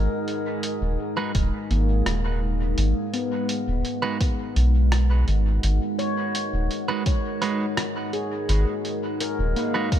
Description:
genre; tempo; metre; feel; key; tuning
ambient dub; 84 BPM; 4/4; straight; G# minor; A4 = 440 Hz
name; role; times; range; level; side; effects
deep dark ambient pad; sustained chords; 0.0-10.0 s; G#3 to F#5; -28 LUFS; equal; chorus, built-in reverb
handpan; arpeggios; 0.0-10.0 s; A#3 to C#5; -31 LUFS; left 2 dB; dub echo
round analog bass; bass; 0.0-9.5 s; D#1 to B1; -20 LUFS; equal; none
drifting glass-harmonics texture; texture; 0.0-2.8 s; G#4; -44 LUFS; equal; chorus, built-in reverb
lo-fi sampler-style drum kit; drums; 0.3-10.0 s; hi-hat, rim click; -32 LUFS; right 1 dB; small room ambience
clean electric guitar; stabs; 1.2-9.9 s; G#3 to B4; -31 LUFS; right 4 dB; dub echo
electronic kick drum; drums; 1.3-10.0 s; none; -22 LUFS; equal; small room ambience
room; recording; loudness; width
light reverb, digital ambience; none; -22 LUFS; side -10 dB against mid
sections
0.0-2.8 A section; 2.8-10.0 B section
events
none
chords
0.0 G#7(no3); 2.8 G#m7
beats
0.63 1.35 2.06 | 2.78 3.49 4.21 4.92 | 5.63 6.35 7.06 7.78 | 8.49 9.21 9.92

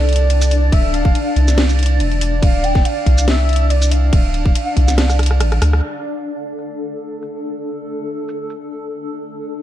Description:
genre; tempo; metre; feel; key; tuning
deep dubstep; 141 BPM; 4/4; swing 54% on 16ths, half-time; D minor; A4 = 440 Hz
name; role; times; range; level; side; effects
breathy bright low ney; melody; 0.0-5.2 s; D5 to G5; -24 LUFS; right 1 dB; dub echo
granular cloud pad; sustained chords; 0.0-9.6 s; D4 to D5; -23 LUFS; left 1 dB; built-in reverb
soft dub sub bass; bass; 0.0-5.8 s; D1 to D2; -14 LUFS; equal; none
garage drum kit; drums; 0.1-8.6 s; crash cymbal, hi-hat, rim click, shaker, snare drum; -23 LUFS; equal; low-pass filter on hats, low-pass filter on snare, low-pass filter on perc, low-pass filter on cymbals
electronic kick drum; drums; 0.7-4.9 s; none; -14 LUFS; equal; none
room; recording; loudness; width
little or no reverb; dark, warm production; -13 LUFS; side -12 dB against mid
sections
0.0-5.8 A section; 5.8-9.6 B section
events
drop 0.0-5.8; kick drops out 5.0-5.8; drum fill 5.0-5.8; band accent 5.7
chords
0.0 Dm; 5.8 D5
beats
0.30 | 0.72 1.15 1.58 2.00 | 2.43 2.85 3.28 3.70 | 4.13 4.55 4.98 5.41 | 5.83 6.26 6.68 7.11 | 7.53 7.96 8.38 8.81 | 9.23

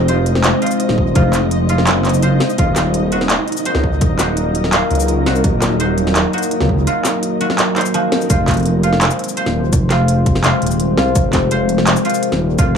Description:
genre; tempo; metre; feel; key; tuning
half-time drum and bass; 168 BPM; 4/4; half-time; F phrygian; A4 = 439 Hz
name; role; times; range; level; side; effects
deep dark ambient pad; sustained chords; 0.0-12.8 s; Gb3 to C5; -19 LUFS; left 2 dB; chorus, built-in reverb, sidechain pumping
koto; arpeggios; 0.0-12.8 s; F3 to C5; -23 LUFS; right 1 dB; dub echo
dark detuned saw bass; bass; 0.0-12.8 s; Eb1 to Db2; -17 LUFS; equal; none
flickering grainy texture; texture; 0.0-8.3 s; Eb4 to Eb5; -25 LUFS; right 1 dB; built-in reverb
industrial drum kit; drums; 0.1-12.7 s; handclaps, hi-hat, shaker, snare drum; -19 LUFS; equal; none
electronic kick drum; drums; 1.0-12.7 s; none; -17 LUFS; equal; none
room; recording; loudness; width
moderate spring reverb, RT60 1.7 s; echo-heavy mix, small room ambience; -13 LUFS; side -7 dB against mid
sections
0.0-8.3 A section; 8.3-12.8 A section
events
drop 0.0-8.3, 8.3-12.8; band accent 8.1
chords
0.0 Fm; 2.6 Ebm; 8.3 Fm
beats
0.09 0.44 0.80 | 1.16 1.51 1.87 2.23 | 2.58 2.94 3.30 3.66 | 4.01 4.37 4.73 5.08 | 5.44 5.80 6.16 6.51 | 6.87 7.23 7.58 7.94 | 8.30 8.66 9.01 9.37 | 9.73 10.09 10.44 10.80 | 11.16 11.51 11.87 12.23 | 12.59

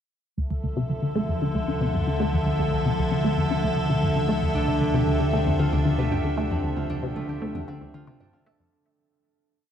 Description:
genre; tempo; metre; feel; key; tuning
ambient, sequencer-driven space music; 115 BPM; 4/4; straight; D minor; A4 = 441 Hz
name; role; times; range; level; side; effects
evolving wavetable pad; sustained chords; 0.6-8.7 s; D3 to E5; -26 LUFS; left 1 dB; chorus, built-in reverb
resonant blip pluck; riff; 0.4-8.7 s; D2 to A3; -26 LUFS; left 1 dB; chorus, phaser, tape echo
fat analog bass; bass; 0.4-8.7 s; D2; -30 LUFS; equal; none
concert harp; arpeggios; 4.5-9.7 s; A3 to A4; -29 LUFS; moving between equal and right 7 dB; auto-pan, tape echo
room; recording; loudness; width
wet cathedral reverb, RT60 6.3 s; in a vast, echoing space; -22 LUFS; side -9 dB against mid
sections
0.4-8.7 A section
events
filter sweep on synth arpeggio sound 0.4-8.7; fade-out 5.9-8.7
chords
0.4 Dmadd9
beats
| 0.38 0.90 1.42 1.94 | 2.46 2.98 3.51 4.03 | 4.55 5.07 5.59 6.12 | 6.64 7.16 7.68 8.20

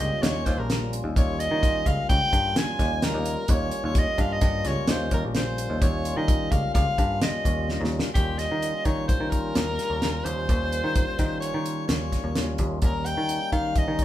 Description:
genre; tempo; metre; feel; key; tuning
progressive instrumental, band music in an uneven meter; 129 BPM; 5/4; straight; Eb mixolydian; A4 = 441 Hz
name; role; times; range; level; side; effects
breathy soprano saxophone; melody; 0.0-14.0 s; G4 to Ab5; -28 LUFS; left 1 dB; none
tonewheel organ; accompaniment; 0.0-14.0 s; G3 to F4; -33 LUFS; left 2 dB; slow rotary speaker
picked electric bass; bass; 0.0-14.0 s; Bb1 to Eb3; -29 LUFS; equal; none
damped 70s drum kit; drums; 0.0-14.0 s; hi-hat, kick drum, snare drum; -25 LUFS; equal; none
room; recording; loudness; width
moderate large studio reverb, RT60 0.9 s; band playing live in one room; -22 LUFS; side -13 dB against mid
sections
0.0-8.2 A section; 8.2-14.0 B section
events
drum fill 7.7-8.2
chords
0.0 Eb7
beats
0.23 0.70 | 1.16 1.63 2.10 2.56 3.03 | 3.50 3.96 4.43 4.89 5.36 | 5.83 6.29 6.76 7.22 7.69 | 8.16 8.62 9.09 9.56 10.03 | 10.49 10.96 11.43 11.89 12.36 | 12.83 13.29 13.76

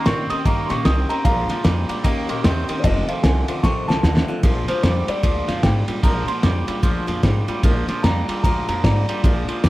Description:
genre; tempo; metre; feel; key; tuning
rockabilly; 150 BPM; 4/4; swing 62% on 8ths; Bb mixolydian; A4 = 441 Hz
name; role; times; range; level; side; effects
dark upright piano; melody; 0.0-9.7 s; C5 to Eb6; -26 LUFS; equal; plate reverb
picked steel-string acoustic guitar; accompaniment; 0.0-9.7 s; F2 to G4; -29 LUFS; left 5 dB; plate reverb
twangy electric guitar; riff; 0.0-9.7 s; F2 to C4; -26 LUFS; right 4 dB; spring reverb
honky-tonk upright piano; accompaniment; 0.1-4.4 s; C5 to Db6; -34 LUFS; left 3 dB; plate reverb
upright bass; bass; 0.1-9.7 s; F1 to Bb2; -22 LUFS; equal; none
cloth-damped thuddy drum kit; drums; 0.1-9.7 s; kick drum, ride cymbal, snare drum; -21 LUFS; equal; none
room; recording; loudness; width
light reverb; none; -17 LUFS; side -17 dB against mid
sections
0.0-4.4 A section; 4.4-9.7 B section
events
upright piano solo 0.0-4.4; drum fill 3.6-4.4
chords
0.0 Eb7; 1.3 Bb7; 2.0 Eb7; 2.8 F7; 4.4 Bb7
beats
0.06 0.46 0.86 | 1.25 1.65 2.05 2.45 | 2.84 3.24 3.64 4.04 | 4.44 4.84 5.24 5.64 | 6.04 6.44 6.84 7.24 | 7.64 8.04 8.44 8.84 | 9.24 9.64

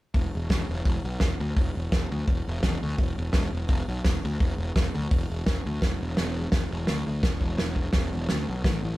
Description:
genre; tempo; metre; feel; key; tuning
garage rock duo or trio; 170 BPM; 4/4; straight; unclear; A4 = 440 Hz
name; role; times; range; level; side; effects
fuzz picked electric bass; bass; 0.1-9.0 s; E1 to D2; -28 LUFS; equal; overdrive
soft brush drum kit; drums; 0.1-8.7 s; hi-hat, kick drum, snare drum; -26 LUFS; equal; none
room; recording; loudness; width
light reverb; band playing live in one room; -24 LUFS; side -17 dB against mid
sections
0.1-5.8 A section; 5.8-9.0 B section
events
none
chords
none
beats
| 0.15 0.51 0.86 1.22 | 1.57 1.93 2.28 2.64 | 2.99 3.35 3.70 4.05 | 4.41 4.76 5.12 5.47 | 5.82 6.18 6.53 6.88 | 7.24 7.59 7.94 8.30 | 8.65

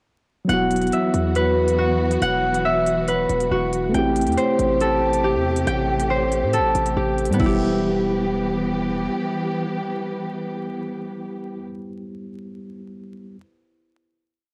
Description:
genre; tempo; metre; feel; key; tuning
hip hop, drill; 139 BPM; 4/4; half-time; E minor; A4 = 440 Hz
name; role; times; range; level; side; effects
mellow tine electric piano; accompaniment; 0.4-13.4 s; F#3 to G4; -28 LUFS; equal; low-pass filter, cassette tape
warm symphonic string section; sustained chords; 0.5-11.6 s; C3 to G4; -30 LUFS; equal; cassette tape
concert harp; arpeggios; 0.5-11.7 s; B3 to G5; -24 LUFS; equal; low-pass filter, cassette tape, tape echo
distorted 808-style bass; bass; 0.5-9.1 s; E1 to A2; -28 LUFS; equal; distortion
drill drum kit; drums; 0.5-7.5 s; crash cymbal, hi-hat, kick drum; -33 LUFS; equal; cassette tape
room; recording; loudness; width
light reverb; home recording on cassette, vinyl crackle; -21 LUFS; mono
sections
0.5-7.4 breakdown; 7.4-10.8 final chord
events
none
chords
0.5 Esus2; 3.9 Am7; 7.4 Em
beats
| 0.49 0.92 1.35 1.78 | 2.22 2.65 3.08 3.51 | 3.94 4.38 4.81 5.24 | 5.67 6.10 6.53 6.96 | 7.40 7.83 8.26 8.69 | 9.12 9.55 9.99 10.42

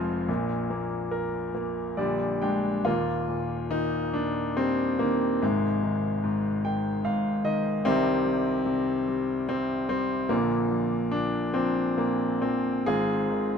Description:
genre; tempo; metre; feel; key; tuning
classical, lyrical solo piano; 72 BPM; 3/4; uneven beats, rubato; Eb major; A4 = 440 Hz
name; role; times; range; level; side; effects
clear grand piano; solo; 0.0-13.6 s; Eb1 to F6; -24 LUFS; left 1 dB; none
room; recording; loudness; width
light reverb; minimal, uncompressed stereo recording; -24 LUFS; side -6 dB against mid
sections
0.0-2.9 A section; 2.9-13.6 B section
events
grand piano fill 1.5-2.9, 6.2-7.8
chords
0.3 Fmadd11/Bb; 2.0 Bb; 2.9 Eb; 5.4 Ab; 7.8 Cm; 10.3 Bb; 12.9 Ab6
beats
| 0.29 1.12 1.98 | 2.85 3.71 4.57 | 5.42 6.24 7.05 | 7.85 8.67 9.49 | 10.31 11.13 11.99 | 12.86

